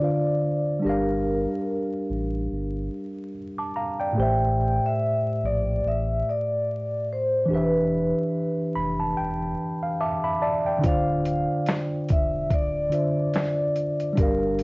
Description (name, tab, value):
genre	lo-fi hip hop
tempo	72 BPM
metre	4/4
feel	swing 57% on 16ths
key	D minor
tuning	A4 = 440 Hz
part	vibraphone with medium mallets	melody	0.0-14.6 s	Bb4 to G5	-26 LUFS	equal	low-pass filter, cassette tape, tape echo
part	mellow tine electric piano	accompaniment	0.0-14.6 s	A2 to D6	-25 LUFS	equal	medium stereo tremolo, cassette tape, low-pass filter
part	sub bass with octave	bass	0.8-14.6 s	D1 to Bb1	-31 LUFS	equal	transformer saturation
part	dusty soul sampler-style drum kit	drums	10.8-14.6 s	finger snaps, hi-hat, kick drum, snare drum	-24 LUFS	equal	cassette tape
room	wet studio reverb, RT60 0.7 s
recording	home recording on cassette, vinyl crackle, nothing above 7.9 kHz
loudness	-22 LUFS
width	side -25 dB against mid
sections	0.0-14.6 A section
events	tine electric piano fill 8.3-10.8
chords	0.0 Dm9; 0.8 Gm7; 4.2 Am7; 7.5 Em7; 10.8 Dm9